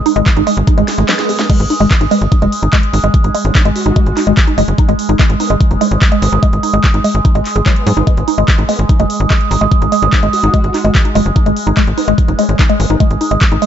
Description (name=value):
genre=psychedelic trance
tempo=146 BPM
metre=4/4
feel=straight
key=G# minor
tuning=A4 = 440 Hz
part: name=overtone-sweeping drone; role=sustained chords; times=0.0-13.7 s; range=G#3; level=-19 LUFS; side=right 3 dB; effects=chorus, built-in reverb, sidechain pumping
part: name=woody wave-folded pluck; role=riff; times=0.1-13.6 s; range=F#3 to G#4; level=-16 LUFS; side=moving between left 4 dB and right 4 dB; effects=chorus, phaser, auto-pan, sidechain pumping, digital delay
part: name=drum and bass drum kit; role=drums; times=0.1-13.7 s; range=crash cymbal, handclaps, hi-hat, snare drum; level=-20 LUFS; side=equal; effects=overdrive
part: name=tight sequencer bass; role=bass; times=0.2-13.6 s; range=F#1 to G#2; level=-14 LUFS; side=equal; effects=none
part: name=electronic kick drum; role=drums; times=0.3-13.5 s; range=none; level=-11 LUFS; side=equal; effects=overdrive
part: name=swell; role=sound effects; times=0.8-1.5 s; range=none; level=-22 LUFS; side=right 3 dB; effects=none
part: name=vowel-sweep wobble bass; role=second line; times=1.1-13.0 s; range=B3 to F#4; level=-28 LUFS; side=left 2 dB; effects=wide subtle chorus, vintage 12-bit sampler grit, sidechain pumping, high-pass filter, digital delay
room=light reverb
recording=nothing above 7.8 kHz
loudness=-10 LUFS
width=side -10 dB against mid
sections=0.0-13.7 A section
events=swell 0.8-1.5; drum fill 0.9-1.5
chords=0.0 G#5